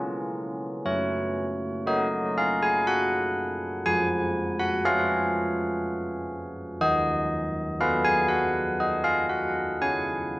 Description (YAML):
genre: classical, tune for church bells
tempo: 60 BPM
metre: 3/4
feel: straight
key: F# major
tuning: A4 = 442 Hz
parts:
  - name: carillon bells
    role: solo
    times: 0.0-10.4 s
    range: D#3 to C#6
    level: -24 LUFS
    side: equal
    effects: none
room: moderate recital hall reverb, RT60 1.3 s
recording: worn, warbling old tape, cassette tape, warbly pitch drift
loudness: -23 LUFS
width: side -20 dB against mid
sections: 0.9-10.4 A section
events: none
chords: 0.0 C#; 0.9 F#; 3.9 C#/E#; 6.8 B/D#; 9.8 C#5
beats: | 0.85 1.87 2.88 | 3.87 4.85 5.83 | 6.81 7.79 8.79 | 9.81